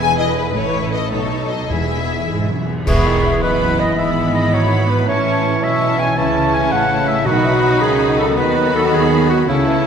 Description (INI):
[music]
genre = classical, dramatic, fast romantic movement for symphony orchestra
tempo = 108 BPM (dotted quarters)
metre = 6/8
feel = rubato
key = E major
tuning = A4 = 440 Hz
[part]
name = warm symphonic violin section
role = melody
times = 0.0-9.9 s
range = B4 to B5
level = -25 LUFS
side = left 6 dB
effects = none
[part]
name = warm symphonic violin section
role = second line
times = 0.0-9.9 s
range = E4 to B4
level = -27 LUFS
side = left 3 dB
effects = none
[part]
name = clear symphonic viola section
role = accompaniment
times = 0.0-9.9 s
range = B3 to A4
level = -23 LUFS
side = right 1 dB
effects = none
[part]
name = concert harp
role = arpeggios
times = 0.0-9.9 s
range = E2 to B5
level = -25 LUFS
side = left 6 dB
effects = none
[part]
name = rich chamber double bass section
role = bass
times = 0.0-9.9 s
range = E1 to D#2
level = -24 LUFS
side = right 4 dB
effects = none
[part]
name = rich symphonic cello section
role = bass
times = 0.0-9.9 s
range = E2 to D#3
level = -23 LUFS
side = right 2 dB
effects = none
[part]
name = cymbal swell, clash cymbals and concert bass drum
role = percussion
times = 0.6-3.6 s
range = none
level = -24 LUFS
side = equal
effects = none
[part]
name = timpani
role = percussion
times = 1.7-3.4, 7.3-7.8 s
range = E2 to B2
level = -26 LUFS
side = equal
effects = none
[part]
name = clear oboe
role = second line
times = 2.9-9.8 s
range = E4 to A5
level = -23 LUFS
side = right 1 dB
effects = none
[part]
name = hollow concert flute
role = second line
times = 2.9-9.9 s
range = A5 to C#6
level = -26 LUFS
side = right 1 dB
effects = none
[part]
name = warm clarinet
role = second line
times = 2.9-9.8 s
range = E4 to A5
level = -20 LUFS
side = equal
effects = none
[part]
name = mellow bassoon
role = accompaniment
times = 2.9-9.8 s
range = C#3 to G#3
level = -24 LUFS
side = right 1 dB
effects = none
[part]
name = mellow French horn section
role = sustained chords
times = 2.9-9.9 s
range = E3 to F#4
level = -24 LUFS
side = equal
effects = none
[sound]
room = wet concert hall reverb, RT60 1.9 s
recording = minimal, uncompressed stereo recording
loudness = -14 LUFS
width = side -7 dB against mid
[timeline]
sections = 0.0-2.9 A section; 2.9-9.9 B section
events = band accent 2.9-3.2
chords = 0.0 E; 0.6 A; 1.1 B9; 1.7 E; 4.0 E/G#; 5.1 A; 6.2 A/C#; 7.3 B; 8.4 B/D#